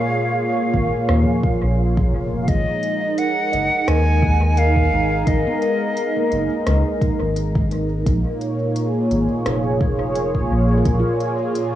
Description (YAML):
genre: ambient dub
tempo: 86 BPM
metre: 4/4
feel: swing 54% on 16ths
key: unclear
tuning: A4 = 440 Hz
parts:
  - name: bright silver concert flute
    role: melody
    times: 0.0-6.7 s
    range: D#5 to G#5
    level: -23 LUFS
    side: right 2 dB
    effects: cassette tape, dub echo
  - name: warm analog pad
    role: sustained chords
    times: 0.0-11.8 s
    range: A#2 to C#5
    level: -21 LUFS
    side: equal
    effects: chorus, cassette tape
  - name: handpan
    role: arpeggios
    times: 0.0-11.8 s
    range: E#3 to D#5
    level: -31 LUFS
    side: right 1 dB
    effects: cassette tape, tape echo
  - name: soft dub sub bass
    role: bass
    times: 0.7-11.0 s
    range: E#1 to D#2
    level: -19 LUFS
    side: equal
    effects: none
  - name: electronic kick drum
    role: drums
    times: 0.7-11.0 s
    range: none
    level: -21 LUFS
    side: equal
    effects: cassette tape
  - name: organic electronic drum kit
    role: drums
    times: 1.1-11.7 s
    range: hi-hat, rim click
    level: -30 LUFS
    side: left 1 dB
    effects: cassette tape, dub echo
room: moderate booth ambience, RT60 0.2 s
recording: home recording on cassette, studio ambience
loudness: -17 LUFS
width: side -12 dB against mid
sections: 0.0-11.8 A section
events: none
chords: 0.0 A#m7; 2.5 G#madd9; 8.1 A#m7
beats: 0.39 1.09 1.78 | 2.48 3.18 3.88 4.58 | 5.27 5.97 6.67 7.37 | 8.06 8.76 9.46 10.16 | 10.85 11.55